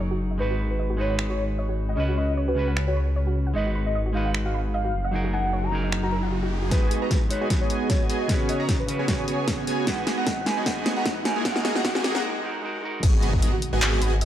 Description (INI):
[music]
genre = future bass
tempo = 152 BPM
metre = 4/4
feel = swing 54% on 16ths, half-time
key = G# minor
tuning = A4 = 442 Hz
[part]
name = clean electric guitar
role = accompaniment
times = 0.0-13.0 s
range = C#3 to B4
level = -30 LUFS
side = right 1 dB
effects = sidechain pumping
[part]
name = soft round pluck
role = arpeggios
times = 0.0-6.7, 13.1-14.2 s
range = F#4 to B5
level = -36 LUFS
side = right 3 dB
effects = chorus, sidechain pumping, digital delay
[part]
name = wide detuned saw bass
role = bass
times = 0.0-6.7, 13.0-14.2 s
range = F#1 to C#2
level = -26 LUFS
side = equal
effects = chorus, sidechain pumping
[part]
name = warm velvety synth lead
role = melody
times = 0.4-12.2 s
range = B4 to A#5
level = -31 LUFS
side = equal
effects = chorus, sidechain pumping, dub echo
[part]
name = big-room dance drum kit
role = drums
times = 1.2-14.2 s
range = crash cymbal, finger snaps, handclaps, hi-hat, snare drum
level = -27 LUFS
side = equal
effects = none
[part]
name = riser and impact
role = sound effects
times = 4.8-14.2 s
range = none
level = -34 LUFS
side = left 1 dB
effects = none
[part]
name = big bright polysynth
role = riff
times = 6.7-14.2 s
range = A#3 to A#5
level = -28 LUFS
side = right 2 dB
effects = lush chorus, sidechain pumping
[part]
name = electronic kick drum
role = drums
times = 6.7-13.4 s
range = none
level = -24 LUFS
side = equal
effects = none
[sound]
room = light reverb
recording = dark, warm production, high-pass filter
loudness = -22 LUFS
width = side -11 dB against mid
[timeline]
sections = 0.0-6.7 A section; 6.7-13.0 B section; 13.0-14.2 C section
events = filter sweep on synth arpeggio sound 0.0-6.7; riser 4.8-6.7; build-up 6.7-13.0; drum fill 6.7-12.2; filter sweep on analog polysynth 6.7-13.0; filter sweep 6.7-13.0; break 12.2-13.0; drop 13.0-14.2; impact 13.0-14.2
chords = 0.4 G#m7; 2.0 C#7sus4; 3.6 G#m7; 4.9 F#69; 6.7 G#m7; 8.3 C#7sus4; 9.9 G#m7; 11.3 F#69; 13.0 G#m7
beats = 0.00 | 0.40 0.79 1.19 1.58 | 1.98 2.37 2.77 3.16 | 3.56 3.95 4.35 4.74 | 5.13 5.53 5.92 6.32 | 6.71 7.11 7.50 7.90 | 8.29 8.69 9.08 9.48 | 9.87 10.27 10.66 11.06 | 11.45 11.85 12.24 12.63 | 13.03 13.43 13.82 14.21